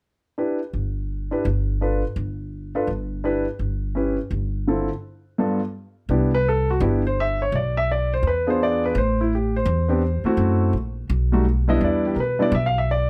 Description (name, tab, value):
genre	jazz piano trio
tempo	168 BPM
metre	4/4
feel	swing 63% on 8ths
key	unclear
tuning	A4 = 441 Hz
part	warm concert grand piano	melody	0.4-13.1 s	G2 to F5	-24 LUFS	equal	none
part	upright bass	bass	0.7-13.1 s	G1 to B2	-25 LUFS	equal	none
room	light reverb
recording	none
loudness	-22 LUFS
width	mono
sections	0.4-6.1 A section; 6.1-13.1 B section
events	none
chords	0.4 Em7; 5.4 G7; 6.1 Cmaj7; 7.5 Bm; 8.2 E7b9; 9.0 Am7; 10.4 F#m7b5; 11.1 Baug; 11.8 Em7